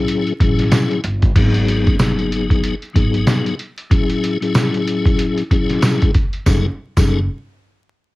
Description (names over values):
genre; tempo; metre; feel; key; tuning
hip hop, boom-bap hip-hop; 94 BPM; 4/4; swing 59% on 16ths; F# dorian; A4 = 439 Hz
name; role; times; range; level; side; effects
tonewheel organ; accompaniment; 0.0-7.2 s; G#2 to A4; -19 LUFS; left 3 dB; chorus vibrato, fast rotary speaker, cassette tape, high-pass filter, low-pass filter
upright bass; bass; 0.0-7.3 s; F#1 to A1; -20 LUFS; equal; none
trip hop sampler-style drum kit; drums; 0.1-7.1 s; crash cymbal, hi-hat, kick drum, snare drum; -16 LUFS; equal; cassette tape
tambourine; percussion; 0.7-7.3 s; none; -34 LUFS; right 7 dB; none
room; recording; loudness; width
light reverb; home recording on cassette, vinyl crackle; -14 LUFS; side -19 dB against mid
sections
0.0-1.4 A section; 1.4-6.5 B section; 6.5-8.2 C section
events
none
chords
0.0 F#m9/A; 1.4 G#m7; 3.9 F#m9/A; 6.5 F#m69